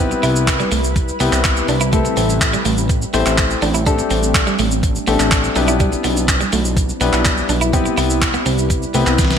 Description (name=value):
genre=dance-pop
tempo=124 BPM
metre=4/4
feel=straight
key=G major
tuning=A4 = 437 Hz
part: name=warm concert grand piano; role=accompaniment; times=0.0-9.4 s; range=A3 to C5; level=-21 LUFS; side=left 6 dB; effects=sidechain pumping
part: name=shimmering ambient pad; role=sustained chords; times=0.0-9.4 s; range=C3 to B4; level=-23 LUFS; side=right 1 dB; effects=chorus, built-in reverb, sidechain pumping
part: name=clean electric guitar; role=riff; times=0.0-9.2 s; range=G3 to E4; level=-23 LUFS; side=right 4 dB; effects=wide subtle chorus
part: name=fat analog bass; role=bass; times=0.0-9.4 s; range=A1 to C2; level=-20 LUFS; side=equal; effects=sidechain pumping
part: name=gated 80s digital drum machine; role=drums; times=0.1-9.4 s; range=handclaps, hi-hat, kick drum, shaker, snare drum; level=-18 LUFS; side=equal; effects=gated reverb, gated reverb snare
room=light reverb, digital ambience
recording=bright 1980s-style digital production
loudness=-14 LUFS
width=side -8 dB against mid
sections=0.0-9.4 A section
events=drum fill 9.2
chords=0.0 Cmaj7; 1.9 Am7; 3.9 D7sus4/A; 5.6 G6/B; 7.7 Cmaj7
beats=0.48 0.96 1.45 | 1.93 2.41 2.90 3.38 | 3.86 4.35 4.83 5.32 | 5.80 6.28 6.77 7.25 | 7.74 8.22 8.70 9.19